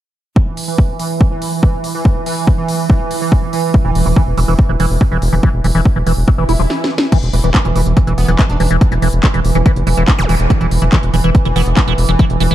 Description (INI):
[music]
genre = psychedelic trance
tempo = 142 BPM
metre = 4/4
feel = straight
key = unclear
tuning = A4 = 440 Hz
[part]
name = pulsing gated texture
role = sustained chords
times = 0.4-12.5 s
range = E3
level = -20 LUFS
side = right 4 dB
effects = chorus, built-in reverb, vintage 12-bit sampler grit, sidechain pumping
[part]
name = electronic kick drum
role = drums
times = 0.4-12.3 s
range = none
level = -12 LUFS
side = equal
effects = overdrive, studio reverb
[part]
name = techno drum kit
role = drums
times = 0.6-12.5 s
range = crash cymbal, handclaps, hi-hat, snare drum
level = -22 LUFS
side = equal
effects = overdrive, studio reverb
[part]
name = liquid acid bass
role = riff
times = 3.7-12.5 s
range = E3 to E4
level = -19 LUFS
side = moving between left 2 dB and right 4 dB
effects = phaser, auto-pan, sidechain pumping, dub echo
[part]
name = round analog bass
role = bass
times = 3.8-12.5 s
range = E1 to F1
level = -15 LUFS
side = equal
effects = tube saturation
[part]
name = swell and zap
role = sound effects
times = 6.4-7.1, 10.2-10.3 s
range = none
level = -25 LUFS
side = left 1 dB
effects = none
[part]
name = metallic wobble bass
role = second line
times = 8.2-8.7, 11.6-11.7 s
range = B3 to D4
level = -30 LUFS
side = right 3 dB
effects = none
[sound]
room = little or no reverb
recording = dark, warm production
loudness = -11 LUFS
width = side -13 dB against mid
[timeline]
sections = 0.4-7.1 A section; 7.1-12.5 B section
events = swell 6.4-7.1; drum fill 6.7-7.1; stop 6.7-7.1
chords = 0.4 N.C.; 7.1 E5